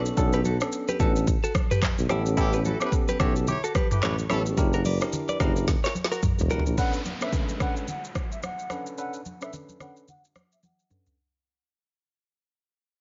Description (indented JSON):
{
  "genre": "afrobeats",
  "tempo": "109 BPM",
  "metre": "4/4",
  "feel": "swing 58% on 16ths",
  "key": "B minor",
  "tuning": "A4 = 439 Hz",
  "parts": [
    { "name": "bell-like tine electric piano", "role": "accompaniment", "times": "0.0-11.2 s", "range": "B3 to B4", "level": "-33 LUFS", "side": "equal", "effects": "low-pass filter" },
    { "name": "direct-recorded clean electric guitar", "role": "riff", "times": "0.0-6.6 s", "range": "E4 to D5", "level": "-34 LUFS", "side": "equal", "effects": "spring reverb, delay" },
    { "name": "mellow tuba", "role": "bass", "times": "0.0-6.7 s", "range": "E1 to B1", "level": "-29 LUFS", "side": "equal", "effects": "none" },
    { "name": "afro-pop drum kit", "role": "drums", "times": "0.1-11.2 s", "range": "handclaps, hi-hat, kick drum, rim click, shaker, snare drum, toms", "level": "-29 LUFS", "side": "equal", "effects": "none" },
    { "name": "congas", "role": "percussion", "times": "0.5-11.1 s", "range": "none", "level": "-39 LUFS", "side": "equal", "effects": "none" },
    { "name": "warm horn section", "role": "second line", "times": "2.4-4.4 s", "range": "C#4 to C#5", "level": "-35 LUFS", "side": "equal", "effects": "none" },
    { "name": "mellow silver concert flute", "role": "melody", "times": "6.8-11.0 s", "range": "E5 to F#5", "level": "-38 LUFS", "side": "equal", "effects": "low-pass filter, delay" },
    { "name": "downlifter", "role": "sound effects", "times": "6.8-11.2 s", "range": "none", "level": "-41 LUFS", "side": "equal", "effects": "none" }
  ],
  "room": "small room reverb",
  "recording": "nothing above 7.5 kHz",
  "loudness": "-26 LUFS",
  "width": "mono",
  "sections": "0.0-6.8 A section; 6.8-11.2 B section",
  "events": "drum fill 5.7-6.8, 10.6-11.2; fade-out 6.8-11.2; filter sweep 6.8-11.2",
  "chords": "0.0 Bm9; 2.1 A9; 4.6 F#7b9b13; 6.8 Bm9",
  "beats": "| 0.17 0.72 1.27 1.82 | 2.37 2.92 3.48 4.03 | 4.58 5.13 5.68 6.23 | 6.78 7.33 7.88 8.43 | 8.98 9.53 10.08 10.63"
}